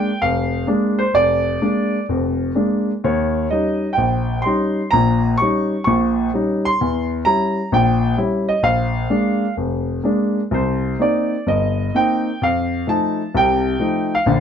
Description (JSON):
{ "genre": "solo jazz", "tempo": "128 BPM", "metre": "4/4", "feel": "swing 69% on 8ths, rubato", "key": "unclear", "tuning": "A4 = 438 Hz", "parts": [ { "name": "warm grand piano", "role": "solo", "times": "0.0-14.4 s", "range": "F1 to Db6", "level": "-16 LUFS", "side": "equal", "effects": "none" } ], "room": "moderate studio reverb, RT60 0.8 s", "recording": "band playing live in one room", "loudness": "-16 LUFS", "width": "side -8 dB against mid", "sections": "0.0-14.4 A section", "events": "none", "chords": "0.0 Bb7; 3.0 Eb7; 6.8 Edim7; 8.6 Bb7; 10.5 Cm7; 12.4 F7" }